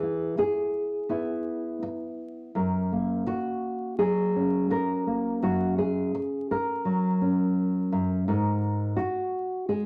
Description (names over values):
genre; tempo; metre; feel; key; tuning
folk, solo fingerstyle acoustic guitar; 84 BPM; 4/4; straight; F# mixolydian; A4 = 440 Hz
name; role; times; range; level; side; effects
nylon-string guitar; solo; 0.0-9.9 s; F#2 to A#4; -27 LUFS; equal; none
room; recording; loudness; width
moderate large studio reverb, RT60 0.9 s; vinyl crackle; -27 LUFS; mono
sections
0.0-9.9 A section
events
none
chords
0.0 E; 2.5 F#; 8.3 G#sus2